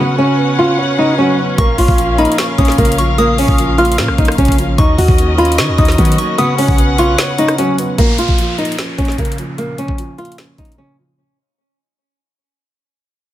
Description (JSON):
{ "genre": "hip hop, trap", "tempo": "150 BPM", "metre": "4/4", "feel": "half-time", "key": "Bb phrygian", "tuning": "A4 = 440 Hz", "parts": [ { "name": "flamenco guitar", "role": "melody", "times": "0.0-11.0 s", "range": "Bb3 to Gb4", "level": "-16 LUFS", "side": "equal", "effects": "digital delay" }, { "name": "dark concert grand piano", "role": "accompaniment", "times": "0.0-11.2 s", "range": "Bb2 to C#5", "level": "-20 LUFS", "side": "right 1 dB", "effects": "none" }, { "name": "dark chamber string section", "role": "sustained chords", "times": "0.0-8.0 s", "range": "Db4 to F#5", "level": "-20 LUFS", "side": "left 2 dB", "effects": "none" }, { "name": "soft synth bell", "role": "second line", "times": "1.6-7.2 s", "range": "Cb6 to F6", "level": "-22 LUFS", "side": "left 2 dB", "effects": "chorus, digital delay" }, { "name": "clean 808-style bass", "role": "bass", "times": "1.6-7.2 s", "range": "Bb1 to Eb3", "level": "-16 LUFS", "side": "equal", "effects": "none" }, { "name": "trap drum kit", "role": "drums", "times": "1.6-10.8 s", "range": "hi-hat, kick drum, rim click, snare drum", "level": "-15 LUFS", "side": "equal", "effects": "none" }, { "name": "downlifter", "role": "sound effects", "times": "8.0-11.2 s", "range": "none", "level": "-24 LUFS", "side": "equal", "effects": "none" } ], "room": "studio reverb", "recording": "none", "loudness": "-11 LUFS", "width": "side -13 dB against mid", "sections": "0.0-8.0 A section; 8.0-11.2 B section", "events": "break 7.2-8.0, 10.8-11.2; fade-out 8.0-11.2", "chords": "0.0 Bsus2; 1.6 Bbm; 4.8 Ebm7; 6.4 Bsus2; 8.0 Bbm", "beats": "0.38 0.78 1.18 | 1.58 1.98 2.38 2.78 | 3.18 3.58 3.98 4.38 | 4.78 5.18 5.58 5.98 | 6.38 6.78 7.18 7.58 | 7.98 8.38 8.78 9.18 | 9.58 9.98 10.38 10.78" }